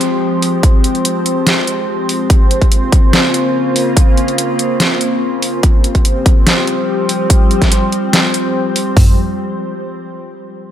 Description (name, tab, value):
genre	heavy wobble dubstep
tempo	144 BPM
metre	4/4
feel	half-time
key	F minor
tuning	A4 = 440 Hz
part	evolving wavetable pad	sustained chords	0.0-9.2 s	Db3 to C5	-16 LUFS	left 1 dB	chorus, built-in reverb, sidechain pumping
part	dubstep drum kit	drums	0.0-8.8 s	hi-hat, snare drum	-15 LUFS	equal	overdrive
part	dubstep drum kit	drums	0.6-9.1 s	hi-hat, kick drum, toms	-10 LUFS	equal	overdrive
room	light reverb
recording	none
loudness	-11 LUFS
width	side -10 dB against mid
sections	0.0-9.0 A section; 9.0-10.6 B section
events	none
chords	0.0 Fmadd9; 2.3 Bbmadd9; 5.6 Csus4; 9.0 Fmadd9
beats	0.22 | 0.63 1.05 1.47 1.88 | 2.30 2.72 3.13 3.55 | 3.97 4.38 4.80 5.22 | 5.63 6.05 6.47 6.88 | 7.30 7.72 8.13 8.55 | 8.97